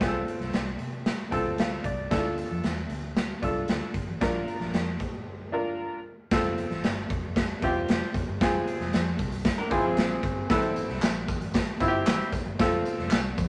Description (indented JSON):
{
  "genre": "uptempo 1960s-style soul",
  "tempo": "114 BPM",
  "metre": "4/4",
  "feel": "straight",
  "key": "unclear",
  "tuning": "A4 = 436 Hz",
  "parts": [
    { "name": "bright upright piano", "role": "accompaniment", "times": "0.0-13.2 s", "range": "B3 to A5", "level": "-31 LUFS", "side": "equal", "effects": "none" },
    { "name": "vintage muted fingered electric bass", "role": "bass", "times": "0.0-13.5 s", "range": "E1 to C3", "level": "-37 LUFS", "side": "equal", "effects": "none" },
    { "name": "raw garage drum kit", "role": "drums", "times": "0.0-13.5 s", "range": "hi-hat, kick drum, snare drum", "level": "-30 LUFS", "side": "equal", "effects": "none" },
    { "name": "electric guitar through a small old amp", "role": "riff", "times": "9.6-10.5 s", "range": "C4 to C5", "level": "-33 LUFS", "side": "equal", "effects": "none" },
    { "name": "tambourine and handclaps", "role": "percussion", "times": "10.5-13.5 s", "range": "none", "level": "-41 LUFS", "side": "equal", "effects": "none" }
  ],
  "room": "light reverb",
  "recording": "none",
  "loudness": "-28 LUFS",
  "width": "mono",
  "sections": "0.0-6.3 A section; 6.3-13.5 B section",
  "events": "upright piano fill 1.1-2.1; break 5.3-6.3",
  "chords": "0.0 F/C; 2.1 Dm; 4.2 Bb; 6.3 F; 8.4 Fm; 10.5 Am; 12.6 F"
}